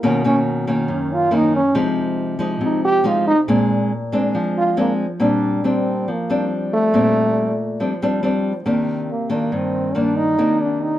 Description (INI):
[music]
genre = bossa nova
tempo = 139 BPM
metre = 4/4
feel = straight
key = Bb major from 5.2 s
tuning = A4 = 437 Hz
[part]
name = mellow trombone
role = melody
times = 0.0-11.0 s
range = A3 to G4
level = -19 LUFS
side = right 1 dB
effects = none
[part]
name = nylon-string guitar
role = accompaniment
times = 0.0-11.0 s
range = F#2 to Eb4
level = -19 LUFS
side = left 1 dB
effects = none
[sound]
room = moderate studio reverb, RT60 0.6 s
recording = band playing live in one room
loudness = -16 LUFS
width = side -13 dB against mid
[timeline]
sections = 0.0-5.2 A section; 5.2-11.0 B section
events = trombone solo 0.0-5.2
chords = 0.0 Bmaj9; 1.8 Ab6/C; 3.5 Bb9; 5.2 Bb69; 8.7 Cm9